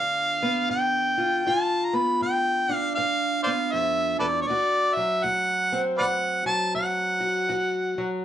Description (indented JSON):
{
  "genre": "acoustic country blues, solo or duo",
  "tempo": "79 BPM",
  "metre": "4/4",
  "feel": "swing 62% on 8ths",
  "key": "unclear",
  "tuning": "A4 = 439 Hz",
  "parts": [
    { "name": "warm harmonica", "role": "melody", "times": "0.0-8.2 s", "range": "A4 to B5", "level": "-23 LUFS", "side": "equal", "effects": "none" },
    { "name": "fingerpicked steel-string acoustic guitar", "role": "accompaniment", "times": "0.0-8.2 s", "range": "D2 to F#4", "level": "-28 LUFS", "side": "equal", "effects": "none" }
  ],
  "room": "moderate studio reverb, RT60 0.6 s",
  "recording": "none",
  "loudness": "-22 LUFS",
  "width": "side -10 dB against mid",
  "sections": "0.0-8.2 A section",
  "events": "none",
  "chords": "0.0 G7; 4.5 D7"
}